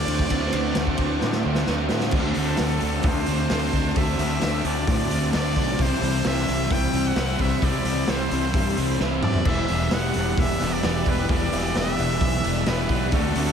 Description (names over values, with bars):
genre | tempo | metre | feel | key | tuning
rock, shoegaze and dream pop | 131 BPM | 4/4 | straight | unclear | A4 = 444 Hz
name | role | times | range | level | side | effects
trumpet with straight mute | melody | 0.0-13.5 s | A4 to G5 | -30 LUFS | equal | tape echo
soft additive organ-like pad | sustained chords | 0.0-13.5 s | G4 to E6 | -32 LUFS | right 2 dB | ensemble chorus, built-in reverb
twangy electric guitar | arpeggios | 0.0-2.1, 9.5-13.5 s | E3 to D4 | -36 LUFS | right 7 dB | none
crunchy overdriven guitar | riff | 0.0-13.5 s | C3 to F#4 | -31 LUFS | equal | wide subtle chorus
overdriven semi-hollow guitar | riff | 0.0-13.5 s | C3 to F#4 | -29 LUFS | right 9 dB | reverse reverb
thick fuzz guitar | riff | 0.0-13.5 s | E2 to D4 | -28 LUFS | left 8 dB | distortion, analog chorus
fuzz fingered electric bass | bass | 0.0-13.5 s | E1 to A2 | -27 LUFS | equal | overdrive
raw garage drum kit | drums | 0.1-13.5 s | crash cymbal, hi-hat, kick drum, ride cymbal, snare drum, toms | -26 LUFS | equal | none
room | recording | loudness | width
moderate lush hall reverb, RT60 1.6 s, small room ambience | dreamy mix soaked in reverb | -20 LUFS | side -7 dB against mid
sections
0.0-2.1 A section; 2.1-13.5 B section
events
drum fill 1.2-2.1, 9.0-9.5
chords
0.0 D7; 2.1 D5; 5.8 Cmaj7; 9.5 Em7